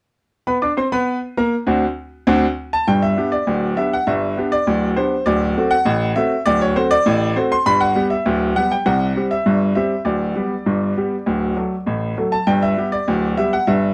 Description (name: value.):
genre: ragtime piano.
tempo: 100 BPM.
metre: 2/4.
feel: straight.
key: G major.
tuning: A4 = 444 Hz.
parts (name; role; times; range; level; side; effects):
clear baby grand piano; solo; 0.5-13.9 s; D1 to D6; -18 LUFS; equal; none.
room: light reverb.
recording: close, detailed microphones.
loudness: -19 LUFS.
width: mono.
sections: 0.5-2.9 A section; 2.9-13.9 B section.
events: none.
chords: 0.5 Bmmaj7; 1.7 D7; 2.9 G; 5.3 D7; 7.7 G; 8.9 C5; 10.1 G/D; 11.3 D; 12.5 G.